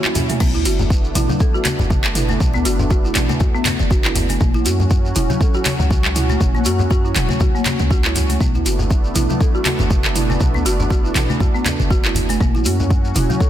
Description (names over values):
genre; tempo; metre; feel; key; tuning
afro house; 120 BPM; 4/4; swing 56% on 16ths; B minor; A4 = 440 Hz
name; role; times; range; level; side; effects
warm analog pad; sustained chords; 0.0-13.5 s; F#3 to F#4; -26 LUFS; equal; chorus, sidechain pumping
folk marimba with medium mallets; arpeggios; 0.0-13.5 s; F#3 to A4; -23 LUFS; right 1 dB; sidechain pumping, digital delay
house drum kit; drums; 0.0-13.3 s; crash cymbal, handclaps, hi-hat, toms; -22 LUFS; right 1 dB; none
shekere; percussion; 0.0-13.5 s; none; -30 LUFS; left 1 dB; none
congas; percussion; 0.1-13.5 s; none; -24 LUFS; left 2 dB; none
warm 808-style bass; bass; 0.4-13.3 s; E1 to F#2; -21 LUFS; equal; sidechain pumping
electronic kick drum; drums; 0.4-13.5 s; none; -17 LUFS; equal; none
room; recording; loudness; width
little or no reverb; dense, heavily limited modern master; -15 LUFS; side -11 dB against mid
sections
0.0-13.5 A section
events
break 0.0-0.4; drum fill 0.0-0.4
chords
0.4 Bm7; 4.4 F#; 8.4 Bm7; 12.4 F#